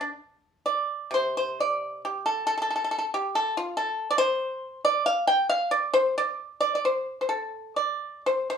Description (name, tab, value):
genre	chinese traditional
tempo	63-70 BPM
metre	2/4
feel	rubato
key	unclear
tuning	A4 = 440 Hz
part	pipa	solo	0.0-8.6 s	C3 to G5	-24 LUFS	equal	none
room	moderate studio reverb, RT60 0.7 s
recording	band playing live in one room, small room ambience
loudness	-24 LUFS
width	side -7 dB against mid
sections	0.0-1.1 A section; 1.1-8.6 B section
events	none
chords	none